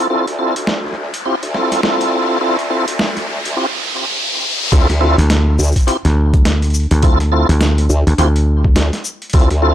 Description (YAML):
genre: glitch hop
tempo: 104 BPM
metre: 4/4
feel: swing 60% on 16ths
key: D minor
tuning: A4 = 441 Hz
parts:
  - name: tonewheel organ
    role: stabs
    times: 0.0-9.7 s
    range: C4 to A4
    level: -18 LUFS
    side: equal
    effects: chorus vibrato, fast rotary speaker, sidechain pumping, low-pass filter, tape echo
  - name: riser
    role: sound effects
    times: 0.0-4.7 s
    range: none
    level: -22 LUFS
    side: equal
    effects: none
  - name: formant-sweep wobble bass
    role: bass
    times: 0.1-9.7 s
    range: D2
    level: -18 LUFS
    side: equal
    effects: chorus, tube saturation, high-pass filter
  - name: boom bap sampler-style drum kit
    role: drums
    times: 0.3-9.6 s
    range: crash cymbal, hi-hat, shaker, snare drum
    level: -21 LUFS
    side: equal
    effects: overdrive, studio reverb
  - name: electronic kick drum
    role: drums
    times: 4.7-9.5 s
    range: none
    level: -11 LUFS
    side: equal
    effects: overdrive, studio reverb
  - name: dry thumbed slap bass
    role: bass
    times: 5.2-8.7 s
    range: D2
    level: -12 LUFS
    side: equal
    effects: none
room: little or no reverb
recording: dry, gritty hardware recording, transformer saturation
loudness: -13 LUFS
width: side -11 dB against mid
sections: 0.0-4.7 A section; 4.7-9.7 B section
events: build-up 0.0-4.7; riser 0.0-4.7; drop 4.7-9.7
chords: 0.0 Dm7